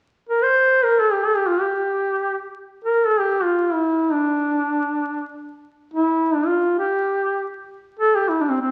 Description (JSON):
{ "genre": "Turkish makam ensemble", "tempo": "free time", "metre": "none", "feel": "none", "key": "G makam huseyni", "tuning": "A4 = 441 Hz", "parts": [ { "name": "dark duduk", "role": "solo", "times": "0.3-8.7 s", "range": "C4 to C5", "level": "-20 LUFS", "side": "equal", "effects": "none" } ], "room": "wet large studio reverb, RT60 1.3 s", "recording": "very old 78 rpm record, vinyl crackle", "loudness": "-20 LUFS", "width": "mono", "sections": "0.0-8.7 A section", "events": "none", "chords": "none" }